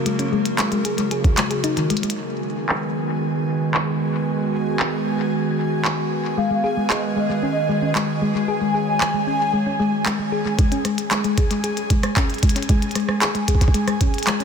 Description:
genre	IDM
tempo	114 BPM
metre	4/4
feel	straight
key	G# minor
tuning	A4 = 439 Hz
part	warbly tape-like pad	sustained chords	0.0-10.6 s	C#3 to C#5	-24 LUFS	right 2 dB	chorus, built-in reverb
part	thumb-piano-like synth pluck	arpeggios	0.1-2.1, 6.4-14.4 s	D#3 to G#4	-24 LUFS	left 2 dB	chorus, ping-pong delay
part	glitchy drum kit	drums	0.1-14.4 s	handclaps, hi-hat, rim click	-26 LUFS	equal	low-pass filter on hats, studio reverb, low-pass filter on snare, ping-pong delay
part	electronic kick drum	drums	1.2-1.3, 10.6-14.1 s	none	-17 LUFS	right 1 dB	overdrive, studio reverb
part	bubbling stepped-filter texture	texture	2.2-14.4 s	G#4 to G#5	-30 LUFS	right 2 dB	chorus, built-in reverb, shimmer reverb
part	warbly nostalgic lead	melody	6.4-10.0 s	D#5 to G#5	-25 LUFS	left 1 dB	ensemble chorus, cassette tape, ping-pong delay, shimmer reverb
room	moderate huge ambient reverb, RT60 8.7 s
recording	dense, heavily limited modern master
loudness	-18 LUFS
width	side -6 dB against mid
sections	0.0-2.2 A section; 2.2-10.6 B section; 10.6-14.4 C section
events	filter sweep on synth arpeggio sound 0.0-2.2; drum fill 1.9; filter sweep on drum 2.2-10.6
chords	0.0 F#; 2.2 G#m7; 6.4 B6; 10.6 N.C.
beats	| 0.06 0.59 1.11 1.64 | 2.17 2.69 3.22 3.74 | 4.27 4.80 5.32 5.85 | 6.38 6.90 7.43 7.95 | 8.48 9.01 9.53 10.06 | 10.59 11.11 11.64 12.16 | 12.69 13.22 13.74 14.27

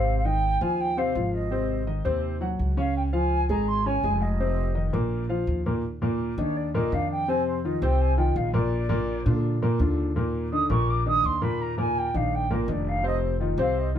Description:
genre	Afro-Cuban jazz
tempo	166 BPM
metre	4/4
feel	straight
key	Eb major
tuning	A4 = 440 Hz
part	mellow silver concert flute	melody	0.0-14.0 s	Bb4 to Eb6	-28 LUFS	right 2 dB	none
part	warm baby grand piano	accompaniment	0.0-14.0 s	Bb2 to Ab5	-26 LUFS	left 2 dB	none
part	upright bass	bass	0.0-14.0 s	F1 to Bb2	-27 LUFS	equal	none
room	moderate studio ambience, RT60 0.4 s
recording	band playing live in one room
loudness	-23 LUFS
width	side -9 dB against mid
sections	0.0-5.8 A section; 5.8-14.0 B section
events	flute solo 5.8-14.0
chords	0.1 Ab6; 1.5 Ab7; 3.0 Db; 4.4 F5; 5.1 Bb5; 5.8 Eb5; 7.3 F5; 8.7 Bb; 10.2 Eb5; 13.0 F5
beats	| 0.07 0.43 0.79 1.15 | 1.51 1.87 2.23 2.59 | 2.95 3.31 3.67 4.04 | 4.40 4.76 5.12 5.48 | 5.84 6.20 6.56 6.92 | 7.28 7.64 8.00 8.36 | 8.72 9.08 9.44 9.80 | 10.16 10.52 10.88 11.24 | 11.60 11.96 12.32 12.68 | 13.04 13.40 13.76

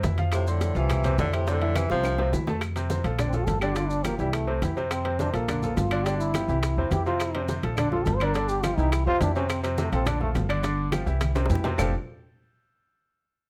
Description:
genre	Afro-Cuban jazz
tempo	209 BPM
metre	4/4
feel	straight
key	F major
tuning	A4 = 440 Hz
part	clear grand piano	accompaniment	0.0-11.9 s	C3 to C6	-32 LUFS	equal	none
part	upright bass	bass	0.0-11.9 s	F1 to F2	-30 LUFS	equal	none
part	bongos	percussion	0.0-11.9 s	none	-38 LUFS	equal	none
part	congas	percussion	0.0-11.9 s	none	-36 LUFS	equal	none
part	maracas	percussion	0.0-11.9 s	none	-47 LUFS	equal	none
part	timbales	percussion	0.0-11.8 s	none	-38 LUFS	equal	none
part	warm tenor saxophone	melody	0.3-2.3 s	C3 to F3	-31 LUFS	equal	none
part	clear trombone	second line	0.3-10.3 s	A2 to C5	-32 LUFS	equal	none
part	claves	percussion	0.3-11.9 s	none	-41 LUFS	equal	none
room	light reverb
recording	close, detailed microphones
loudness	-26 LUFS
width	mono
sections	0.0-2.6 A section; 2.6-11.8 B section; 11.8-12.9 C section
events	drum fill 1.9-2.6, 11.2-11.8; trombone solo 2.6-11.8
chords	0.3 Fmaj7; 2.6 F; 3.2 Bbmaj7; 3.8 G5; 4.3 C; 4.9 F; 5.5 Bbmaj7; 6.1 G5; 6.6 C; 7.2 F; 7.8 Bbmaj7; 8.3 G5; 8.9 C; 9.5 F; 10.1 Bbmaj7; 10.6 G5; 11.2 C; 11.8 F69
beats	0.04 | 0.33 0.61 0.90 1.18 | 1.47 1.75 2.04 2.33 | 2.61 2.90 3.19 3.47 | 3.76 4.05 4.33 4.62 | 4.91 5.20 5.48 5.77 | 6.05 6.34 6.63 6.92 | 7.20 7.49 7.78 8.06 | 8.35 8.63 8.92 9.21 | 9.49 9.78 10.07 10.35 | 10.64 10.93 11.21 11.50 | 11.79

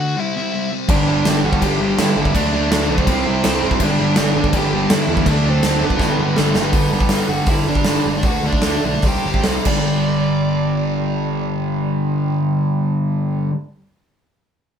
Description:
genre	punk rock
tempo	138-165 BPM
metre	4/4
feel	straight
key	G major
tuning	A4 = 439 Hz
part	smooth overdriven lead guitar	melody	0.0-13.5 s	A3 to G5	-24 LUFS	equal	none
part	sludgy distorted guitar	riff	0.0-13.5 s	G2 to D4	-21 LUFS	left 3 dB	overdrive
part	cranked stack guitar	riff	0.9-13.5 s	G2 to D4	-23 LUFS	right 8 dB	overdrive
part	distorted electric guitar	riff	0.9-6.7 s	G2 to E4	-26 LUFS	right 1 dB	none
part	growling picked electric bass	bass	0.9-13.5 s	F#1 to G2	-24 LUFS	equal	overdrive
part	big rock drum kit	drums	0.9-9.8 s	crash cymbal, hi-hat, kick drum, snare drum	-19 LUFS	equal	none
room	moderate studio reverb, RT60 0.6 s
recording	band playing live in one room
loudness	-15 LUFS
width	side -8 dB against mid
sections	0.0-6.7 A section; 6.7-9.9 B section; 9.9-13.4 C section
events	drum fill 6.0-6.7, 9.7; slowing down 6.7-9.9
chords	0.2 C; 0.9 G; 2.3 D; 3.1 C; 3.8 G; 5.3 D; 6.0 G; 8.2 D; 9.0 C5; 9.7 G5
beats	0.16 0.52 | 0.89 1.25 1.62 1.98 | 2.35 2.71 3.08 3.44 | 3.81 4.17 4.54 4.90 | 5.27 5.63 6.00 6.37 | 6.74 7.10 7.47 7.85 | 8.24 8.63 9.03 9.45 | 9.88 10.31 10.75 11.19 | 11.62 12.06 12.50 12.93

